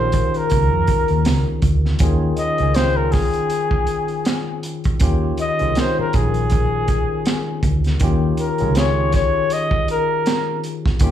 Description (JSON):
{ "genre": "R&B, neo-soul", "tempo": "80 BPM", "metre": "4/4", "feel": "swing 57% on 16ths", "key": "unclear", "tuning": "A4 = 440 Hz", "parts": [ { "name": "breathy flugelhorn", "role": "melody", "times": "0.0-10.6 s", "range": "Ab4 to Eb5", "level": "-21 LUFS", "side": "left 2 dB", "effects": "slapback echo" }, { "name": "tine electric piano", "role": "accompaniment", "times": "0.0-11.1 s", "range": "Eb3 to G5", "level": "-24 LUFS", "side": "left 1 dB", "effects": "medium stereo tremolo, slapback echo" }, { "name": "vintage muted fingered electric bass", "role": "bass", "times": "0.0-11.1 s", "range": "Bb1 to F2", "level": "-19 LUFS", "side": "equal", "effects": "none" }, { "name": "crunchy breakbeat drum kit", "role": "drums", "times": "0.1-11.1 s", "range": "hi-hat, kick drum, snare drum", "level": "-20 LUFS", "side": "right 1 dB", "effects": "none" } ], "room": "little or no reverb", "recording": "live gig heard through the venue's PA, club reverb", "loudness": "-16 LUFS", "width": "side -10 dB against mid", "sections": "0.0-11.1 A section", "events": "none", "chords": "0.0 Eb9sus4" }